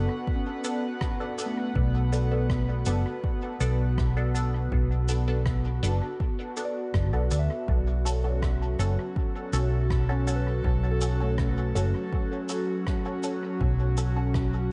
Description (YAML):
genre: ambient dub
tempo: 81 BPM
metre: 4/4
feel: straight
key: B minor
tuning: A4 = 440 Hz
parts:
  - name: airy breathy pad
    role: sustained chords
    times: 0.0-14.7 s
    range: F#3 to F#5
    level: -35 LUFS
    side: equal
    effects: chorus
  - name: soft synth bell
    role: arpeggios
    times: 0.0-14.7 s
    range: A3 to C#6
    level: -42 LUFS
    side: equal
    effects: chorus, phaser, vintage 12-bit sampler grit, dub echo
  - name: filtered dub chord stab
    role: stabs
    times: 0.0-14.3 s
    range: B3 to A4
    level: -38 LUFS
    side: equal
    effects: phaser, lush chorus, dub echo
  - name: hollow-body short-scale fingered electric bass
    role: bass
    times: 0.0-14.7 s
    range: F#1 to D2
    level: -28 LUFS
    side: equal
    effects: none
  - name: electronic kick drum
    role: drums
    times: 0.3-14.5 s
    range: none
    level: -31 LUFS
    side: equal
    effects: none
  - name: shaker and rim click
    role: drums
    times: 0.6-14.5 s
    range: none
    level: -42 LUFS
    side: equal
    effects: dub echo
room: light reverb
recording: dark, warm production, nothing above 10.8 kHz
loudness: -27 LUFS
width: mono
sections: 0.0-14.7 A section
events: none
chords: 0.0 Bm7; 7.7 F#m